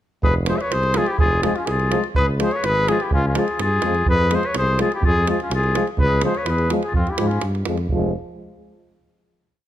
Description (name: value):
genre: balkan folk, Balkan brass band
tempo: 125 BPM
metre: 2/4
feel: straight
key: F hungarian minor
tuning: A4 = 441 Hz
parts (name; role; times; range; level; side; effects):
- warm trumpet; melody; 0.2-7.4 s; F4 to E5; -22 LUFS; equal; none
- bright clarinet; second line; 0.2-7.4 s; C4 to C5; -27 LUFS; left 5 dB; none
- mellow tuba; bass; 0.2-8.1 s; F1 to Ab2; -23 LUFS; equal; none
- davul; percussion; 0.2-8.1 s; none; -24 LUFS; right 2 dB; none
- warm euphonium; accompaniment; 0.5-8.1 s; F3; -29 LUFS; right 8 dB; none
- warm trombone; accompaniment; 0.5-8.1 s; Ab3; -28 LUFS; left 8 dB; none
room: light reverb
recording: close, detailed microphones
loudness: -17 LUFS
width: side -12 dB against mid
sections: 0.2-7.9 A section; 7.9-8.9 final chord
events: none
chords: 0.2 Fm; 2.2 Db; 4.1 Fm; 6.0 Db; 6.9 Fm